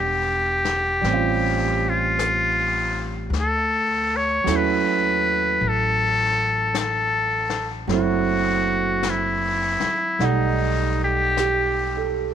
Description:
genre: jazz ballad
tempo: 52 BPM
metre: 4/4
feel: swing 69% on 8ths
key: D major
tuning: A4 = 440 Hz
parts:
  - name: trumpet with metal mute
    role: melody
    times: 0.0-12.1 s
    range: D#4 to C#5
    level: -21 LUFS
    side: left 2 dB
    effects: none
  - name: warm concert grand piano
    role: accompaniment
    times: 0.0-12.3 s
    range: F#3 to F#5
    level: -25 LUFS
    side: right 10 dB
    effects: none
  - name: upright bass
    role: bass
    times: 0.0-12.3 s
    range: E1 to Eb2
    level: -27 LUFS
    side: left 1 dB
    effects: none
  - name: vintage brush drum kit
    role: drums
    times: 0.6-12.3 s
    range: brushed snare drum, hi-hat, snare drum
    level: -33 LUFS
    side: left 12 dB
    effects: none
room: light reverb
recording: 1960s-style stereo with parts hard left and right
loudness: -19 LUFS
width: side -9 dB against mid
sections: 0.0-12.3 A section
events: none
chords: 0.0 Em7; 1.0 A7alt; 3.3 Dmaj7; 7.9 F#m7b5; 10.2 B7b13

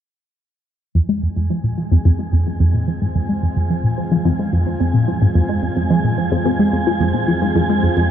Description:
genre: ambient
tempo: 109 BPM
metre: 4/4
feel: straight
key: F minor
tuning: A4 = 439 Hz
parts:
  - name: analog drone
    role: bass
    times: 4.1-8.1 s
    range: F2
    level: -32 LUFS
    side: equal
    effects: none
  - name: lush unison pad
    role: sustained chords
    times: 1.6-8.1 s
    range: Ab3 to F4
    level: -26 LUFS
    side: left 1 dB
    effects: chorus
  - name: tight sequenced synth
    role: riff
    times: 1.0-8.1 s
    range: F2 to Ab3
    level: -16 LUFS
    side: equal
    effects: chorus, phaser, tape echo
  - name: wind-like tuned noise texture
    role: texture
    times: 1.7-8.1 s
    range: Ab5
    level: -27 LUFS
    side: right 3 dB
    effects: built-in reverb, shimmer reverb
room: wet cathedral reverb, RT60 4.8 s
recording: in a vast, echoing space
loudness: -15 LUFS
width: side -9 dB against mid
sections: 1.0-8.1 A section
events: fade-in on analog synth pad 1.0-8.1; fade-in on synth texture 1.0-8.1; filter sweep on synth arpeggio sound 1.0-8.1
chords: 1.0 Fm

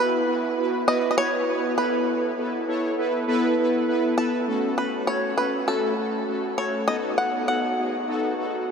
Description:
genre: pop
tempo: 100 BPM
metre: 4/4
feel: straight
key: F# dorian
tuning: A4 = 439 Hz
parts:
  - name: bluegrass banjo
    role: melody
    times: 0.0-8.6 s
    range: A4 to F#5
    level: -26 LUFS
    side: equal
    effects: analog delay
  - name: analog synth brass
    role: accompaniment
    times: 0.0-8.7 s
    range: A3 to C#5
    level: -23 LUFS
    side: equal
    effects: chorus
room: wet huge ambient reverb, RT60 9.0 s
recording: dreamy mix soaked in reverb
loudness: -22 LUFS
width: side -6 dB against mid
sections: 0.0-4.5 A section; 4.5-8.7 B section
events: none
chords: 0.0 Bsus4; 1.8 Asus2; 4.5 F#m; 6.9 B7

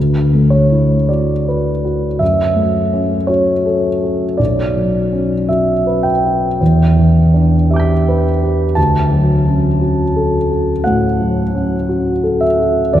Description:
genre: classical, impressionist solo piano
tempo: 52-58 BPM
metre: 4/4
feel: rubato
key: D major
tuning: A4 = 436 Hz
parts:
  - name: warm concert grand piano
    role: solo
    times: 0.0-13.0 s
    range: B1 to B6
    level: -12 LUFS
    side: equal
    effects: none
room: wet cathedral reverb, RT60 4.9 s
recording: recorded in a church or concert hall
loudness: -12 LUFS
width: side -11 dB against mid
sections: 0.0-13.0 A section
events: none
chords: 0.0 D69; 2.2 F#m7; 4.4 Bmadd9; 6.6 Em7; 8.8 Dmaj7

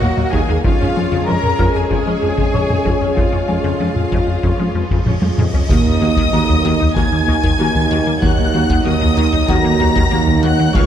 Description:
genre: cinematic, hybrid orchestral and electronic film score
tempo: 95 BPM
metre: 4/4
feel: straight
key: Eb minor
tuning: A4 = 444 Hz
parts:
  - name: warm symphonic violin section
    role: melody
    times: 0.0-10.9 s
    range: Ab4 to Bb6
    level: -24 LUFS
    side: left 3 dB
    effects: none
  - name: warm symphonic violin section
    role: second line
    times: 0.0-10.9 s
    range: Db5 to Bb5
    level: -25 LUFS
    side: left 4 dB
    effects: none
  - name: rich symphonic viola section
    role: accompaniment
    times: 0.0-10.8 s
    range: Eb3 to F5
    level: -25 LUFS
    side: right 1 dB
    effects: none
  - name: mellow French horn section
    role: sustained chords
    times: 0.0-10.9 s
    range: Gb3 to Ab4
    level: -25 LUFS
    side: left 3 dB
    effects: none
  - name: resonant blip pluck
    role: arpeggios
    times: 0.0-10.8 s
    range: Db3 to Eb4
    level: -26 LUFS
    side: left 4 dB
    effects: chorus
  - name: round analog bass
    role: riff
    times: 0.0-10.9 s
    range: Db2 to F3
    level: -20 LUFS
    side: left 2 dB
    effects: none
  - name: rich symphonic cello section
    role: bass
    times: 0.0-10.9 s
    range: Db2 to Bb4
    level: -23 LUFS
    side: right 2 dB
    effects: none
  - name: warm symphonic double bass section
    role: bass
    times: 0.0-10.9 s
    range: Db2 to F2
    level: -24 LUFS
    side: right 4 dB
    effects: none
  - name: warm tuba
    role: bass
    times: 0.0-10.9 s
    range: F1 to Eb2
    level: -22 LUFS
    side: right 6 dB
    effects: none
  - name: solo taiko drums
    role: drums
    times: 0.0-10.9 s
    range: none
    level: -20 LUFS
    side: equal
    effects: none
  - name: felt-muted upright piano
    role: texture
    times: 1.6-10.9 s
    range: Gb4 to F6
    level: -28 LUFS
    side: left 2 dB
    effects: tape echo
  - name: cymbal swell and sub drop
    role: sound effects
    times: 5.1-8.2 s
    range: none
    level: -26 LUFS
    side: equal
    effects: none
room: moderate scoring stage reverb, RT60 2.0 s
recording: dark, warm production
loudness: -13 LUFS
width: side -9 dB against mid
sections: 0.0-5.7 A section; 5.7-10.9 B section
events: cymbal swell 5.1-5.7; drum fill 5.1-5.7; impact 5.7-8.2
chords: 0.0 Ebm; 0.6 Db/F; 5.7 Ebm

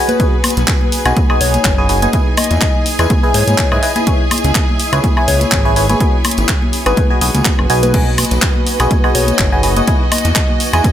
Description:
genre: piano house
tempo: 124 BPM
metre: 4/4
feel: swing 55% on 16ths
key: B major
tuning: A4 = 441 Hz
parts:
  - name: bright studio violin section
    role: sustained chords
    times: 0.0-10.9 s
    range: F#4 to B5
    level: -25 LUFS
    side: right 2 dB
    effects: sidechain pumping
  - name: barking FM electric piano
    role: riff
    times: 0.0-10.9 s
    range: E4 to G#5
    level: -18 LUFS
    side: equal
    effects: phaser, sidechain pumping
  - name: granular cloud pad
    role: texture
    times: 0.0-10.9 s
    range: E3 to B5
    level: -23 LUFS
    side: left 1 dB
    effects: built-in reverb, sidechain pumping
  - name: soft struck synth lead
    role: melody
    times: 0.1-10.6 s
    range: B4 to D#5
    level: -22 LUFS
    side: left 4 dB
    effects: chorus, tape echo
  - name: garage drum kit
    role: drums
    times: 0.1-10.9 s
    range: crash cymbal, handclaps, hi-hat, woodblock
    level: -18 LUFS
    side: equal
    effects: none
  - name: congas and tambourine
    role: percussion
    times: 0.1-10.9 s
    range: none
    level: -22 LUFS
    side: left 3 dB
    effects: none
  - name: electronic kick drum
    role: drums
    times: 0.2-10.9 s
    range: none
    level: -15 LUFS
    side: equal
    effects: none
  - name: fat analog bass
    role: bass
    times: 0.6-10.8 s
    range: F#1 to G#2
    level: -16 LUFS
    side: equal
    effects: sidechain pumping
room: light reverb, digital ambience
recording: none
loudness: -11 LUFS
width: side -11 dB against mid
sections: 0.0-10.9 A section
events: none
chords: 0.2 B6; 2.1 Emaj7; 4.1 C#m7; 6.0 G#m7; 7.9 B6; 9.9 Emaj7

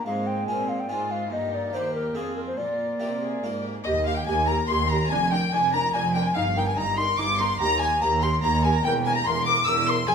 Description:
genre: classical, baroque-style concerto movement with solo episodes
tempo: 144 BPM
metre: 3/4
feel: straight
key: Eb major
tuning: A4 = 441 Hz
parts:
  - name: bright baroque flute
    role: melody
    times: 0.0-10.1 s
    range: Ab4 to E6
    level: -26 LUFS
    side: left 1 dB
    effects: none
  - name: warm chamber violin section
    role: melody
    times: 0.0-10.1 s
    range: F4 to E6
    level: -30 LUFS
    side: left 2 dB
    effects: none
  - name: warm chamber violin section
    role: second line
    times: 0.0-10.1 s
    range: C4 to E6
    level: -30 LUFS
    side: left 1 dB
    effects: none
  - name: dark chamber viola section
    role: accompaniment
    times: 0.0-10.1 s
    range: Ab3 to Bb4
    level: -33 LUFS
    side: right 2 dB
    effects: none
  - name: harpsichord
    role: accompaniment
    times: 0.0-10.1 s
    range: Eb2 to C5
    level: -35 LUFS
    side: equal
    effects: none
  - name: warm chamber cello section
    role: bass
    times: 0.0-10.1 s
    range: Eb2 to C3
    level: -30 LUFS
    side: right 2 dB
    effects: none
  - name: rich chamber double bass section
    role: bass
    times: 3.9-10.1 s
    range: E1 to Eb2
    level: -29 LUFS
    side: right 2 dB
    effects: none
room: wet recital hall reverb, RT60 1.4 s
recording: minimal, uncompressed stereo recording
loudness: -22 LUFS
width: side -6 dB against mid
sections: 0.0-3.9 A section; 3.9-10.1 B section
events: none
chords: 0.1 Fm/Ab; 1.3 Eb/G; 2.1 Fm; 2.6 Bb; 3.9 Eb; 5.1 Bb7/F; 6.4 Eb/G; 7.6 Eb; 8.8 C7/E

